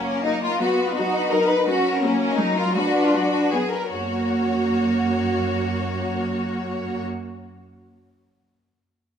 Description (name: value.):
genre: quick classical-period movement for string orchestra.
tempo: 148-171 BPM.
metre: 3/4.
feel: straight.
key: F# major.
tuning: A4 = 440 Hz.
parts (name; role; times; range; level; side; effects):
clear studio violin section; melody; 0.0-7.0 s; A#4 to C#5; -31 LUFS; left 6 dB; none.
clear symphonic violin section; second line; 0.0-7.0 s; C#4 to B4; -23 LUFS; left 2 dB; none.
rich symphonic viola section; accompaniment; 0.0-7.1 s; F#3 to F#4; -27 LUFS; right 2 dB; none.
rich symphonic cello section; bass; 0.0-7.0 s; F#2 to D#4; -25 LUFS; right 1 dB; none.
room: wet recital hall reverb, RT60 1.9 s.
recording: minimal, uncompressed stereo recording.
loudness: -20 LUFS.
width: side -8 dB against mid.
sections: 0.0-3.9 A section; 3.9-6.3 B section.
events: slowing down 1.1-3.9.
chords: 0.0 F#; 0.6 B/F#; 1.7 F#; 2.8 Bm/F#; 3.9 F#.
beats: 0.26 | 0.61 0.97 1.32 | 1.67 2.03 2.39 | 2.75 3.13 3.52 | 3.92 4.31 4.71 | 5.11 5.50 5.89.